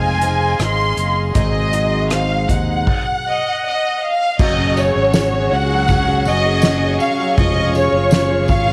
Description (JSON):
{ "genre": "pop ballad", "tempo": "80 BPM", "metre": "4/4", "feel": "straight", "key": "unclear", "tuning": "A4 = 440 Hz", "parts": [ { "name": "rich studio violin section", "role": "melody", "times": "0.0-8.7 s", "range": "Db5 to C6", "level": "-20 LUFS", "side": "equal", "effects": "none" }, { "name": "warm grand piano", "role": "accompaniment", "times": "0.0-8.7 s", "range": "F3 to C5", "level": "-27 LUFS", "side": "equal", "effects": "none" }, { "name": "dark studio string section", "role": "sustained chords", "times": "0.0-8.7 s", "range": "Gb4 to Db6", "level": "-27 LUFS", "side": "equal", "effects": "none" }, { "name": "picked steel-string acoustic guitar", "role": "arpeggios", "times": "0.0-8.7 s", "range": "Ab2 to Ab4", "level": "-30 LUFS", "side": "equal", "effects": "none" }, { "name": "fingered electric bass", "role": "bass", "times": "0.0-8.7 s", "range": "F1 to Eb2", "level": "-22 LUFS", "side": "equal", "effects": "none" }, { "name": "soft-mallet drum kit", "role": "drums", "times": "0.2-8.7 s", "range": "crash cymbal, hi-hat, kick drum, ride cymbal, rim click, snare drum", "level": "-22 LUFS", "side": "equal", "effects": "none" }, { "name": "tambourine", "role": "percussion", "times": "4.4-8.7 s", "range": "none", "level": "-37 LUFS", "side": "equal", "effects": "none" } ], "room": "light reverb, small room ambience", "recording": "none", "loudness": "-17 LUFS", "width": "mono", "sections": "0.0-4.4 A section; 4.4-8.7 B section", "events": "none", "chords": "0.0 Fm7; 1.4 Ab7; 4.4 Gbsus2; 7.4 Db/F" }